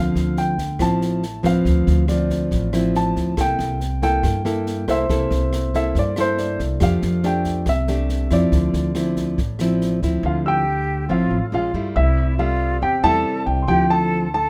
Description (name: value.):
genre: bossa nova.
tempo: 140 BPM.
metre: 4/4.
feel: straight.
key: D minor.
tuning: A4 = 440 Hz.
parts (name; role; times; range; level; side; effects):
warm baby grand piano; melody; 0.0-14.5 s; C5 to A5; -26 LUFS; equal; none.
nylon-string guitar; accompaniment; 0.0-14.5 s; G2 to A4; -24 LUFS; equal; none.
upright bass; bass; 0.0-14.5 s; A1 to G2; -26 LUFS; equal; none.
open jazz drum kit; drums; 0.2-10.1 s; kick drum, rim click, snare drum; -30 LUFS; equal; none.
warm grand piano; accompaniment; 1.4-7.0, 10.5-14.5 s; B4 to E6; -32 LUFS; equal; none.
jazz flute; second line; 10.2-14.5 s; E4 to A4; -29 LUFS; equal; none.
room: light reverb.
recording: none.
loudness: -20 LUFS.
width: mono.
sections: 0.0-10.2 A section; 10.2-14.5 B section.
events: none.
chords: 0.0 Dm9; 3.4 C13; 6.8 F69; 8.5 Dm9; 11.5 Bbm7; 12.0 Am7/C; 13.7 Dm9.